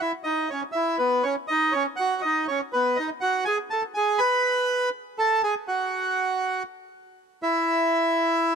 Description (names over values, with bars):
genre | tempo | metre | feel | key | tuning
tango | 121 BPM | 4/4 | rubato | unclear | A4 = 443 Hz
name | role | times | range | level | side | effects
bandoneon | solo | 0.0-8.6 s | B3 to B5 | -22 LUFS | right 1 dB | none
room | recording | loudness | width
light reverb | close, detailed microphones | -22 LUFS | side -6 dB against mid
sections
0.0-8.6 A section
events
none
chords
0.5 Bsus24; 1.5 F#5; 2.5 Badd9; 3.5 G#m; 4.4 Asus2; 5.4 F#sus2; 7.4 N.C.